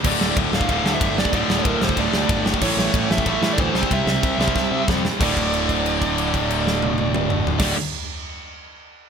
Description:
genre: punk rock.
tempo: 186 BPM.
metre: 4/4.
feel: straight.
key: unclear.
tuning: A4 = 443 Hz.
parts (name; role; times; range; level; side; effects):
crunchy overdriven guitar; riff; 0.0-7.8 s; D2 to C4; -26 LUFS; right 12 dB; none.
distorted electric guitar; riff; 0.0-7.8 s; D2 to C4; -25 LUFS; left 16 dB; overdrive.
high-gain distorted guitar; riff; 0.0-7.8 s; D2 to C4; -27 LUFS; equal; distortion.
fuzz picked electric bass; bass; 0.0-7.7 s; D1 to C3; -27 LUFS; equal; overdrive.
big rock drum kit; drums; 0.0-7.7 s; crash cymbal, kick drum, ride cymbal, snare drum, toms; -23 LUFS; equal; none.
dark smooth lead guitar; melody; 0.1-7.7 s; Bb4 to F5; -26 LUFS; right 3 dB; overdrive.
room: light reverb.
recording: none.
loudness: -18 LUFS.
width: side -7 dB against mid.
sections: 0.0-5.2 A section; 5.2-7.8 B section.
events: drum fill 4.6-5.2; held note 5.2-7.6.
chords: 0.0 D5; 2.6 A; 3.7 C; 5.2 D5.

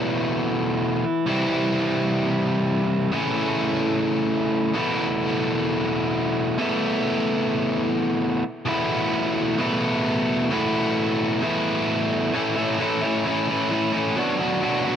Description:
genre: rock.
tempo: 130 BPM.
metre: 4/4.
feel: straight.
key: unclear.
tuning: A4 = 440 Hz.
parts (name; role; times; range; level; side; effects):
biting overdriven guitar; solo; 0.0-15.0 s; A2 to F#4; -20 LUFS; equal; cassette tape, analog delay.
room: moderate booth ambience, RT60 0.2 s.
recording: home recording on cassette.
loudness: -20 LUFS.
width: side -8 dB against mid.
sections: 0.0-8.7 A section; 8.7-12.3 B section; 12.3-15.0 C section.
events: none.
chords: 0.0 Esus4/B; 1.3 C; 3.1 A/C#; 4.7 Esus4/B; 12.3 A; 14.2 Bm.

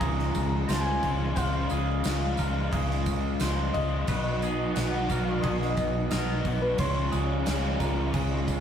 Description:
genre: rock, shoegaze and dream pop.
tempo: 88 BPM.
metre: 4/4.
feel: straight.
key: Db major.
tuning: A4 = 440 Hz.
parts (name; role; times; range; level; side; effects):
soft struck synth lead; melody; 0.0-8.6 s; Cb5 to Bb5; -34 LUFS; left 2 dB; chorus.
twangy electric guitar; arpeggios; 0.0-8.6 s; Ab4 to C6; -37 LUFS; right 4 dB; none.
crunchy overdriven guitar; riff; 0.0-8.6 s; Cb3 to Gb4; -31 LUFS; left 1 dB; none.
crunchy overdriven guitar; riff; 0.0-8.6 s; Cb3 to Eb4; -35 LUFS; right 3 dB; none.
vintage muted fingered electric bass; bass; 0.0-8.6 s; Cb2 to Db2; -29 LUFS; equal; none.
gated 80s drum kit; drums; 0.0-8.6 s; crash cymbal, kick drum, snare drum; -33 LUFS; equal; none.
tambourine; percussion; 0.0-8.6 s; none; -45 LUFS; right 6 dB; none.
room: wet studio reverb, RT60 0.5 s.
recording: rough rehearsal-room recording.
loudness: -25 LUFS.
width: side -8 dB against mid.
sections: 0.0-8.6 A section.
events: none.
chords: 0.0 Dbmaj7; 4.1 Cb; 6.8 Dbmaj7.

